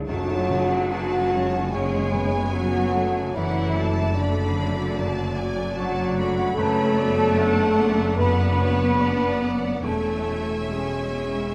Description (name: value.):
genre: cinematic, emotional film score for orchestra.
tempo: 74 BPM.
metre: 4/4.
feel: rubato.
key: F# minor.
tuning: A4 = 436 Hz.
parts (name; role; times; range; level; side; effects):
mellow large flute ensemble; second line; 0.0-11.5 s; D5 to B5; -33 LUFS; equal; none.
warm baby grand piano; accompaniment; 0.0-11.5 s; E2 to G#4; -33 LUFS; equal; none.
mellow French horn section; sustained chords; 0.0-11.5 s; D4 to B4; -29 LUFS; equal; none.
concert harp; arpeggios; 0.0-11.5 s; E2 to B5; -36 LUFS; equal; none.
rich symphonic cello section; bass; 0.0-11.5 s; D3 to B3; -30 LUFS; equal; none.
clear symphonic violin section; melody; 0.1-11.5 s; F#5 to B5; -38 LUFS; equal; none.
bright symphonic violin section; second line; 0.1-11.5 s; B4 to E5; -39 LUFS; equal; none.
warm symphonic viola section; accompaniment; 0.1-11.5 s; F#3 to D4; -36 LUFS; equal; none.
rich symphonic double bass section; bass; 0.1-11.5 s; E1 to F#1; -30 LUFS; equal; none.
tam-tam; percussion; 0.1-3.3 s; none; -38 LUFS; equal; none.
dark cor anglais; second line; 1.7-11.5 s; A4 to F#5; -37 LUFS; equal; none.
room: moderate scoring stage reverb, RT60 1.8 s.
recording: none.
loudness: -23 LUFS.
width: mono.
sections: 0.1-11.5 A section.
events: band accent 0.1-0.9.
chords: 0.1 F#madd9; 3.4 D/F#; 6.6 Bm/F#; 9.8 E6.